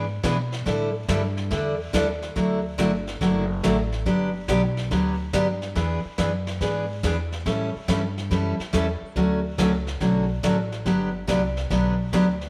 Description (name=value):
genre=country, western swing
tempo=141 BPM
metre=4/4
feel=swing 67% on 8ths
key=D major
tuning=A4 = 440 Hz
part: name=picked steel-string acoustic guitar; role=accompaniment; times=0.0-12.3 s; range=D3 to A4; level=-26 LUFS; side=equal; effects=none
part: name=upright bass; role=bass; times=0.0-12.5 s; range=F#1 to B2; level=-31 LUFS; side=equal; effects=none
part: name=jazz brush drum kit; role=drums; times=0.2-12.5 s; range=brushed snare drum, hi-hat, kick drum, snare drum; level=-36 LUFS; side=equal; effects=none
room=moderate echo chamber reverb, RT60 1.7 s, small room ambience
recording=none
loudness=-24 LUFS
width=mono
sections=0.0-2.4 A section; 2.4-12.5 B section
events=none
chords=0.0 E7; 0.7 A7sus4; 2.4 Dadd9; 4.1 Gmaj7; 5.8 E7; 7.5 A7; 9.2 Dmaj7; 10.9 Gmaj7